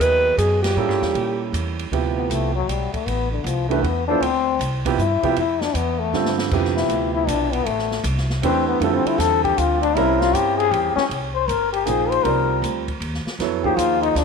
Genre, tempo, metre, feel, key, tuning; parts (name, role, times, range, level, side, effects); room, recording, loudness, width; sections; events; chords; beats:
modal jazz; 157 BPM; 3/4; swing 65% on 8ths; D dorian, F dorian from 11.1 s; A4 = 440 Hz
dark alto saxophone; melody; 0.0-1.5 s; G4 to Cb5; -19 LUFS; right 2 dB
growling trombone; second line; 0.0-14.2 s; Bb2 to C5; -21 LUFS; left 8 dB
warm concert grand piano; accompaniment; 0.0-14.2 s; C3 to Fb5; -24 LUFS; right 12 dB
upright bass; bass; 0.0-14.2 s; G1 to Bb2; -25 LUFS; equal
open jazz drum kit; drums; 0.0-14.2 s; crash cymbal, hi-hat, kick drum, ride cymbal, snare drum; -31 LUFS; right 1 dB
moderate plate reverb, RT60 1.9 s, small room ambience; 1960s-style stereo with parts hard left and right; -18 LUFS; side -5 dB against mid
0.0-1.9 A section; 1.9-11.1 B section; 11.1-14.2 B section
band accent 0.6; trombone solo 1.9-14.2; drum fill 6.1-6.5
0.0 Dbm11 (rootless); 0.8 A7b9; 1.9 Dm11; 10.0 C7b9; 11.1 Fm11
0.00 0.38 | 0.77 1.15 1.53 | 1.92 2.30 2.69 | 3.07 3.45 3.83 | 4.22 4.60 4.98 | 5.37 5.75 6.13 | 6.51 6.90 7.28 | 7.66 8.04 8.43 | 8.81 9.19 9.57 | 9.96 10.34 10.72 | 11.10 11.48 11.87 | 12.25 12.63 13.01 | 13.39 13.78 14.16